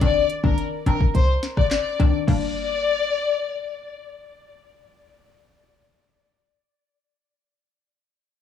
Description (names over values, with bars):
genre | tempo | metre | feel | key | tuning
dancehall | 106 BPM | 4/4 | straight | G minor | A4 = 441 Hz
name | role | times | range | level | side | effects
warm studio violin section | melody | 0.0-3.9 s | Bb4 to D5 | -24 LUFS | left 6 dB | analog delay
hollow square pluck | accompaniment | 0.0-6.0 s | Eb3 to D4 | -26 LUFS | left 4 dB | chorus
short 808-style bass | bass | 0.0-5.3 s | G1 to C2 | -21 LUFS | equal | none
afro-pop drum kit | drums | 0.0-2.4 s | crash cymbal, handclaps, hi-hat, kick drum, rim click, snare drum | -23 LUFS | left 1 dB | none
room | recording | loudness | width
digital ambience | dry, gritty hardware recording, cassette tape, small room ambience | -19 LUFS | side -9 dB against mid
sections
0.0-2.3 A section; 2.3-4.5 B section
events
none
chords
0.0 Cmadd9; 2.3 Gm